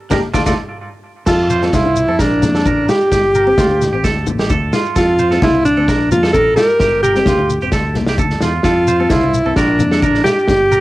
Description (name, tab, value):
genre	highlife guitar band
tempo	130 BPM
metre	4/4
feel	straight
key	F major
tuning	A4 = 440 Hz
part	nylon-string guitar	accompaniment	0.1-10.7 s	A3 to G4	-24 LUFS	left 4 dB	cassette tape
part	twangy electric guitar	arpeggios	0.1-10.8 s	D4 to D5	-21 LUFS	right 5 dB	cassette tape, analog delay
part	fingered electric bass	bass	0.1-10.8 s	E1 to F2	-20 LUFS	equal	none
part	vintage drum kit	drums	0.1-10.6 s	crash cymbal, kick drum, snare drum	-19 LUFS	equal	cassette tape
part	congas	percussion	0.1-10.6 s	none	-24 LUFS	left 2 dB	none
part	shekere	percussion	0.1-10.8 s	none	-24 LUFS	left 3 dB	none
part	warm alto saxophone	melody	1.3-10.8 s	D4 to Bb4	-14 LUFS	equal	cassette tape, analog delay
room	moderate booth ambience, RT60 0.2 s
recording	home recording on cassette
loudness	-12 LUFS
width	side -17 dB against mid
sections	0.0-1.3 A section; 1.3-10.8 B section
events	band accent 0.0-1.3; clean electric guitar solo 0.0-1.3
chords	0.3 Dm; 1.3 F; 2.2 Bb; 3.1 Gm; 4.0 Dm; 5.0 F; 5.9 Bb; 6.8 Gm; 7.7 Dm; 8.6 F; 9.6 Bb